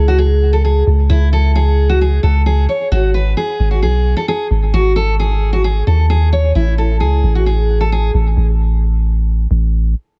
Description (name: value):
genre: hip hop, trap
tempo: 132 BPM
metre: 4/4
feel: half-time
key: G# phrygian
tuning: A4 = 442 Hz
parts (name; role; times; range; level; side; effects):
- picked steel-string acoustic guitar; melody; 0.0-8.1 s; E4 to C#5; -20 LUFS; equal; low-pass filter, analog delay
- long sustained 808-style bass; bass; 0.0-9.9 s; G#1 to D#2; -15 LUFS; equal; none
room: little or no reverb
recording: echo-heavy mix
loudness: -14 LUFS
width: mono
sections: 0.0-10.2 A section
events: none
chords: 0.0 C#5; 2.9 G#5; 6.6 N.C.